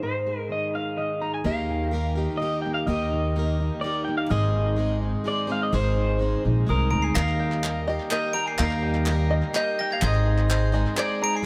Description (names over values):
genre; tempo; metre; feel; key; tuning
indie folk with a building arrangement; 126 BPM; 3/4; straight; Eb major; A4 = 440 Hz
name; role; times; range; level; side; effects
electric guitar through a small old amp; melody; 0.0-11.5 s; Bb4 to Bb5; -31 LUFS; equal; harmonic tremolo, dub echo
fingerpicked steel-string acoustic guitar; accompaniment; 0.0-8.6 s; Eb2 to Ab4; -34 LUFS; equal; dub echo
picked plugged-in swing-style acoustic guitar; accompaniment; 1.4-11.5 s; Ab2 to C5; -34 LUFS; equal; dub echo
upright bass; bass; 1.4-10.8 s; Ab1 to Eb2; -26 LUFS; equal; none
glockenspiel with soft plastic mallets; second line; 6.7-11.5 s; Eb6 to D7; -34 LUFS; equal; none
dark studio string section; sustained chords; 7.2-11.5 s; G3 to Eb4; -40 LUFS; equal; none
open-back banjo; arpeggios; 7.2-11.5 s; Eb4 to Eb5; -36 LUFS; equal; none
group handclap; percussion; 7.2-11.1 s; none; -36 LUFS; equal; dub echo
room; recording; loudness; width
light reverb; echo-heavy mix; -25 LUFS; mono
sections
0.0-1.4 A section; 1.4-11.5 B section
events
build-up 1.4-11.5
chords
0.0 Ab; 1.4 Eb; 4.3 Ab; 7.2 Eb; 10.0 Ab